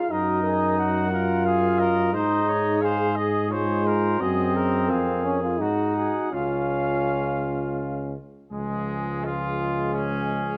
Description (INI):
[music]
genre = classical, brass quintet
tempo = 80-90 BPM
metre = 3/4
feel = rubato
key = Db major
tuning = A4 = 440 Hz
[part]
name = warm cornet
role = melody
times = 0.0-10.6 s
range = Ab4 to Gb5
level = -34 LUFS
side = equal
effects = none
[part]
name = clear trombone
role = accompaniment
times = 0.0-10.6 s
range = F3 to Ab4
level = -28 LUFS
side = equal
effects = none
[part]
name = mellow French horn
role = accompaniment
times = 0.0-10.6 s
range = Ab3 to Bb4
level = -33 LUFS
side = equal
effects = none
[part]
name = clear trumpet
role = second line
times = 0.1-10.6 s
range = Ab3 to Db5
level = -33 LUFS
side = equal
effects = none
[part]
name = warm tuba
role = bass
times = 0.1-10.6 s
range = Db2 to Ab2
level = -30 LUFS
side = equal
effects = none
[sound]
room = moderate recital hall reverb, RT60 1.5 s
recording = close, detailed microphones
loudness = -24 LUFS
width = mono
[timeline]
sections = 0.0-8.5 A section; 8.5-10.6 B section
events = none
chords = 0.1 Ebm/Gb; 2.1 Ab; 4.2 Ab7/Gb; 4.9 Fmadd11; 5.6 Ab5; 6.3 Db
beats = | 0.11 0.78 1.46 | 2.13 2.82 3.51 | 4.20 4.90 5.60 | 6.33 7.08 7.80 | 8.52 9.24 9.93